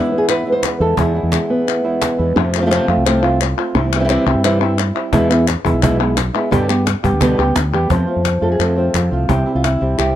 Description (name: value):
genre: flamenco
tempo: 173 BPM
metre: 4/4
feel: straight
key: unclear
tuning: A4 = 441 Hz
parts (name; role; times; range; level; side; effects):
- flamenco guitar; melody; 0.0-10.2 s; E2 to C5; -17 LUFS; equal; none
- flamenco guitar; stabs; 0.0-10.2 s; B2 to G4; -24 LUFS; right 4 dB; none
- cajon; percussion; 0.3-2.2, 5.1-9.8 s; none; -21 LUFS; right 3 dB; none
- palmas hand claps; percussion; 0.3-10.2 s; none; -22 LUFS; left 16 dB; none
- mellow fretless electric bass; bass; 0.8-10.2 s; B1 to G2; -18 LUFS; equal; none
room: small room ambience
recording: dry, close 1970s-style studio recording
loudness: -13 LUFS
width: side -12 dB against mid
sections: 0.0-2.4 A section; 2.4-7.9 B section; 7.9-10.2 C section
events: none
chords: 0.0 E; 2.4 F; 3.7 C; 5.1 E; 6.5 G; 7.9 F; 9.3 C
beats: 0.29 0.63 | 0.98 1.32 1.67 2.02 | 2.36 2.71 3.06 3.40 | 3.75 4.09 4.44 4.78 | 5.13 5.48 5.82 6.17 | 6.52 6.86 7.21 7.56 | 7.90 8.25 8.60 8.95 | 9.29 9.64 9.99